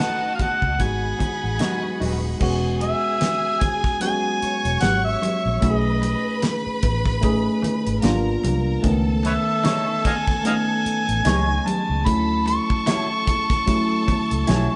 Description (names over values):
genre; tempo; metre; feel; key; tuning
lush 1970s-style soul; 75 BPM; 4/4; swing 58% on 16ths; unclear; A4 = 440 Hz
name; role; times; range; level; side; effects
overdriven harmonica; melody; 0.0-14.8 s; B4 to C#6; -26 LUFS; equal; none
bright studio violin section; second line; 0.0-14.8 s; G#3 to C#6; -33 LUFS; equal; none
tine electric piano; accompaniment; 0.0-14.8 s; D#3 to G#5; -27 LUFS; equal; none
electric guitar through a small old amp; riff; 0.0-2.2, 9.6-14.7 s; D#4 to C#5; -33 LUFS; equal; spring reverb
damped 70s drum kit; drums; 0.0-14.7 s; crash cymbal, hi-hat, kick drum, snare drum; -27 LUFS; equal; none
vintage muted fingered electric bass; bass; 0.4-14.7 s; D#1 to D2; -27 LUFS; equal; none
congas; percussion; 0.4-14.7 s; none; -32 LUFS; equal; none
room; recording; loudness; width
wet stone room reverb, RT60 1.2 s; band playing live in one room, nothing above 10.7 kHz; -21 LUFS; mono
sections
0.0-2.4 A section; 2.4-14.8 B section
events
tine electric piano fill 14.1-14.8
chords
0.0 B7; 0.8 G#m7; 2.4 E69; 5.6 B13; 8.0 G#dim7; 8.8 Amaj9#11/C#; 12.1 Dmaj9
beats
0.80 1.60 | 2.41 3.21 4.02 4.82 | 5.63 6.43 7.23 8.04 | 8.84 9.65 10.45 11.26 | 12.06 12.87 13.67 14.48